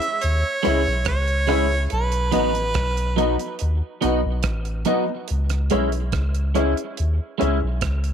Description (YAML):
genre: roots reggae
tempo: 71 BPM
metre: 4/4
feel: straight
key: C# minor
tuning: A4 = 438 Hz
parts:
  - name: warm harmonica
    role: melody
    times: 0.0-3.6 s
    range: B4 to E5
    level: -24 LUFS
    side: right 3 dB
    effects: tape echo
  - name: damped 70s drum kit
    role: drums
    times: 0.0-8.1 s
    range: hi-hat, kick drum, rim click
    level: -29 LUFS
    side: right 4 dB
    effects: none
  - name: soft dub sub bass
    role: bass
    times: 0.2-8.1 s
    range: A1 to D#2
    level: -22 LUFS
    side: equal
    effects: none
  - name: clean electric guitar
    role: accompaniment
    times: 0.6-7.6 s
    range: F#3 to E4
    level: -26 LUFS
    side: right 12 dB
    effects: analog chorus, tape echo
  - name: dark upright piano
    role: stabs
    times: 0.6-7.6 s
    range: D#4 to E5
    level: -26 LUFS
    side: left 13 dB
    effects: none
room: moderate spring reverb, RT60 2.6 s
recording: 1960s-style stereo with parts hard left and right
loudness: -19 LUFS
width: side -8 dB against mid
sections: 0.0-8.1 A section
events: none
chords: 0.0 C#m; 1.9 B; 5.3 C#m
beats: 0.21 1.06 | 1.90 2.75 3.59 4.44 | 5.28 6.13 6.97 7.82